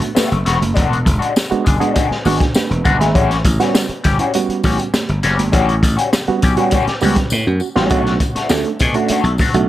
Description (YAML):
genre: funk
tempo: 101 BPM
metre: 4/4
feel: straight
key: unclear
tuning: A4 = 440 Hz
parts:
  - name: electric guitar at the edge of break-up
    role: accompaniment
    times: 0.0-9.6 s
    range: G3 to G#4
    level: -20 LUFS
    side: left 5 dB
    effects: wah
  - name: barky reed electric piano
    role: stabs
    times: 0.0-9.7 s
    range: G3 to F#5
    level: -20 LUFS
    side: right 6 dB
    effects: overdrive
  - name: crunchy breakbeat drum kit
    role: drums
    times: 0.0-9.7 s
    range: hi-hat, kick drum, snare drum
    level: -18 LUFS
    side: equal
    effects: none
  - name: congas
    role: percussion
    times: 0.2-9.5 s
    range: none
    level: -26 LUFS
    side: right 4 dB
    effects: none
  - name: tambourine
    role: percussion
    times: 0.2-9.5 s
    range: none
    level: -31 LUFS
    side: left 5 dB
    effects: none
  - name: slap bass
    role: bass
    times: 0.3-9.7 s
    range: E1 to B2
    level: -17 LUFS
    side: equal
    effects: none
room: light reverb, studio reverb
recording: none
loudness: -13 LUFS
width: side -14 dB against mid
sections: 0.0-7.9 A section; 7.9-9.7 B section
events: drum fill 7.3-7.9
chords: 0.0 Gmaj9 (rootless); 0.8 E9; 3.1 A13; 7.9 Bm7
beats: 0.17 | 0.76 1.36 1.96 2.55 | 3.15 3.75 4.34 4.94 | 5.53 6.13 6.72 7.32 | 7.91 8.51 9.10